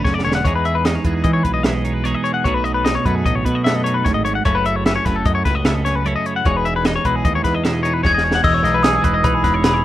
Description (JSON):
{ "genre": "math rock and midwest emo", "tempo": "150 BPM", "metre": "5/4", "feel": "straight", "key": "E major", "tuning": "A4 = 440 Hz", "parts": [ { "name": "twelve-string electric guitar", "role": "accompaniment", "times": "0.0-9.8 s", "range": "E2 to B4", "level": "-22 LUFS", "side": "right 4 dB", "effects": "none" }, { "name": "twangy electric guitar", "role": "arpeggios", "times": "0.0-9.8 s", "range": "G#4 to F#5", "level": "-20 LUFS", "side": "left 5 dB", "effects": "none" }, { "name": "growling picked electric bass", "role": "bass", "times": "0.0-9.8 s", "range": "E1 to E3", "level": "-22 LUFS", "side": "equal", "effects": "overdrive" }, { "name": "compact cocktail drum kit", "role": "drums", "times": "0.1-9.7 s", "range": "crash cymbal, hi-hat, kick drum, snare drum", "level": "-20 LUFS", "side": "equal", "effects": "none" }, { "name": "glockenspiel with soft plastic mallets", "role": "melody", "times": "8.1-9.8 s", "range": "B5 to G#6", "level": "-17 LUFS", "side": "left 1 dB", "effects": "none" } ], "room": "light reverb", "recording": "rough home demo mix", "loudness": "-15 LUFS", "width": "side -13 dB against mid", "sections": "0.0-8.4 A section; 8.4-9.8 B section", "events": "drum fill 0.0-0.4, 8.0-8.4", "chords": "0.4 Emaj7; 2.4 B7; 4.5 F#m7; 6.5 Emaj7" }